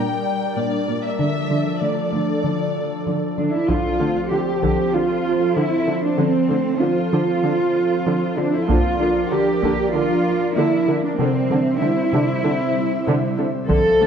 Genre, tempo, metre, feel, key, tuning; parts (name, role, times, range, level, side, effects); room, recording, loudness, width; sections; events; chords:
cinematic, hybrid orchestral and electronic film score; 96 BPM; 4/4; straight; A4 = 441 Hz
warm symphonic violin section; melody; 0.0-3.4 s; D5 to G5; -27 LUFS; left 7 dB
airy breathy pad; sustained chords; 0.0-14.1 s; F3 to F5; -23 LUFS; equal; chorus
thumb-piano-like synth pluck; arpeggios; 0.0-14.1 s; C3 to Bb4; -27 LUFS; left 2 dB; chorus, ping-pong delay
dark symphonic cello section; bass; 0.6-14.1 s; Bb2 to A4; -20 LUFS; right 2 dB
rich symphonic viola section; accompaniment; 3.7-14.1 s; D3; -25 LUFS; right 1 dB
taiko ensemble; drums; 3.7-4.9, 8.7-9.9, 13.7-14.1 s; -25 LUFS; equal
moderate concert hall reverb, RT60 1.9 s; -17 LUFS; side -7 dB against mid
0.0-3.7 A section; 3.7-14.1 B section
0.0 Gm; 1.2 Dm; 3.7 F/D; 8.7 Bb/D; 11.2 C